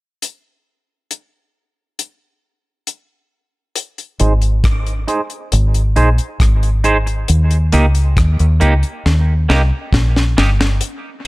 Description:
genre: dub reggae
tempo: 68 BPM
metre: 4/4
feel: straight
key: Ab major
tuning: A4 = 441 Hz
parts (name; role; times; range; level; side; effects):
- deep reggae drum kit; drums; 0.2-11.3 s; hi-hat, kick drum, rim click, snare drum; -18 LUFS; left 1 dB; none
- clean electric guitar; accompaniment; 4.2-10.6 s; Bb3 to C5; -20 LUFS; right 3 dB; high-pass filter, low-pass filter, dub echo
- deep dub fingered electric bass; bass; 4.2-10.8 s; G1 to Eb2; -13 LUFS; equal; none
room: studio reverb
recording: none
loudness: -12 LUFS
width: side -21 dB against mid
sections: 0.2-3.8 A section; 3.8-10.8 B section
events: filter sweep on clean electric guitar 3.8-11.3; drum fill 9.0-10.8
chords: 0.2 N.C.; 3.8 Ab; 7.3 Eb

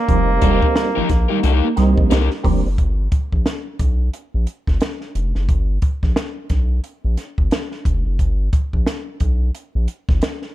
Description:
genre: funk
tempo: 89 BPM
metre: 4/4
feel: swing 60% on 16ths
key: unclear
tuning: A4 = 440 Hz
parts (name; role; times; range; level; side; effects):
- brilliant trombone; melody; 0.0-2.1 s; A#3; -23 LUFS; right 2 dB; tape echo
- electric guitar at the edge of break-up; riff; 0.0-2.6 s; F3 to Bb3; -23 LUFS; right 5 dB; spring reverb
- percussive tonewheel organ; stabs; 0.1-2.7 s; G3 to Eb4; -24 LUFS; right 4 dB; chorus vibrato, fast rotary speaker
- round analog bass; bass; 0.1-10.2 s; F1 to C2; -18 LUFS; equal; none
- compact cocktail drum kit; drums; 0.1-10.5 s; hi-hat, kick drum, snare drum; -19 LUFS; equal; none
- crunchy overdriven guitar; accompaniment; 0.4-2.3 s; Eb4 to Bb4; -24 LUFS; left 11 dB; none
room: little or no reverb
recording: dark, warm production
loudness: -16 LUFS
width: side -14 dB against mid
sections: 0.0-2.8 A section; 2.8-10.5 B section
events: none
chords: 0.1 F9sus4; 2.8 G(#9)

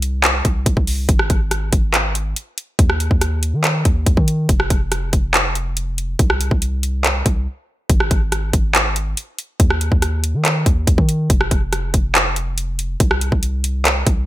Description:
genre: hip hop, trap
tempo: 141 BPM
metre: 4/4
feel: half-time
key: Ab major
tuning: A4 = 440 Hz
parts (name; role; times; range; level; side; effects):
- long sustained 808-style bass; bass; 0.0-14.3 s; F1 to Eb3; -20 LUFS; equal; none
- trap drum kit; drums; 0.0-14.2 s; handclaps, hi-hat, kick drum, rim click; -16 LUFS; equal; gated reverb
room: little or no reverb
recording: bright 1980s-style digital production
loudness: -15 LUFS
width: side -15 dB against mid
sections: 0.0-7.9 A section; 7.9-14.3 A section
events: break 7.5-7.9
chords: none

